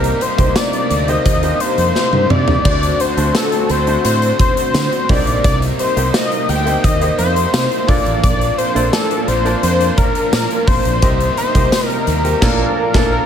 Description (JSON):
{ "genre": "1980s-style pop", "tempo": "86 BPM", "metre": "4/4", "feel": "straight", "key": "unclear", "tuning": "A4 = 436 Hz", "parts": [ { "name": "wide unison lead", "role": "melody", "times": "0.0-13.3 s", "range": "A4 to G5", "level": "-18 LUFS", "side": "left 3 dB", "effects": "ping-pong delay" }, { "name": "clear concert grand piano", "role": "accompaniment", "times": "0.0-13.3 s", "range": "Bb2 to A5", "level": "-23 LUFS", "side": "right 3 dB", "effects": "none" }, { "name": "overdriven electric guitar", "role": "accompaniment", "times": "0.0-13.2 s", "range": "Bb2 to D4", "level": "-27 LUFS", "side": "left 1 dB", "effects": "analog chorus" }, { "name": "lush unison pad", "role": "sustained chords", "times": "0.0-13.3 s", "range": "C3 to F#4", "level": "-24 LUFS", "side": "right 1 dB", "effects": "chorus" }, { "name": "fingered electric bass", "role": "bass", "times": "0.0-13.2 s", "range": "A1 to D3", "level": "-19 LUFS", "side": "equal", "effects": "none" }, { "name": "big rock drum kit", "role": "drums", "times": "0.0-13.1 s", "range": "crash cymbal, hi-hat, kick drum, snare drum, tambourine, toms", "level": "-18 LUFS", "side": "equal", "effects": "none" } ], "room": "light reverb, small room ambience", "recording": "none", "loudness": "-13 LUFS", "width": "side -8 dB against mid", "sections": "0.0-13.3 A section", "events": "drum fill 2.0-2.7; band accent 12.4-13.3", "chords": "0.0 Cm7; 2.7 D7; 5.1 Cm7; 7.9 Bbmaj7; 11.0 Cm7; 12.4 Bbmaj7" }